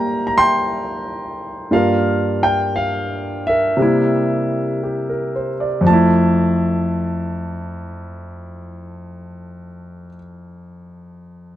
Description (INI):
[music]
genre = solo jazz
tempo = 58 BPM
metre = 4/4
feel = swing 69% on 8ths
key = F major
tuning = A4 = 442 Hz
[part]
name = warm grand piano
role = solo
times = 0.0-11.6 s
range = F2 to C6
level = -17 LUFS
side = equal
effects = none
[sound]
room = light reverb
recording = dark, warm production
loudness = -16 LUFS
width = side -12 dB against mid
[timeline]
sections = 0.0-5.9 A section; 5.9-10.0 B section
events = none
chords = 0.0 Abmaj9; 1.7 Gm7; 3.8 C7; 5.9 Fmaj7